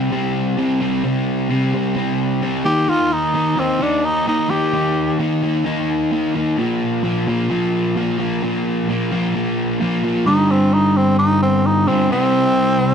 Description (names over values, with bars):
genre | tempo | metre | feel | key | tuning
rock | 130 BPM | 4/4 | straight | unclear | A4 = 441 Hz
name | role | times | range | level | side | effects
crunchy overdriven guitar | riff | 0.0-12.9 s | G2 to Eb4 | -17 LUFS | equal | none
growling tenor saxophone | melody | 2.6-5.2, 10.3-12.9 s | C4 to G4 | -18 LUFS | equal | none
room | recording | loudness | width
studio reverb | dry, close 1970s-style studio recording | -16 LUFS | side -7 dB against mid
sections
0.0-10.3 A section; 10.3-12.9 B section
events
tenor saxophone solo 10.3-12.9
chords
0.0 C5; 2.7 Eb; 6.6 Bb5; 10.3 G5; 12.1 C5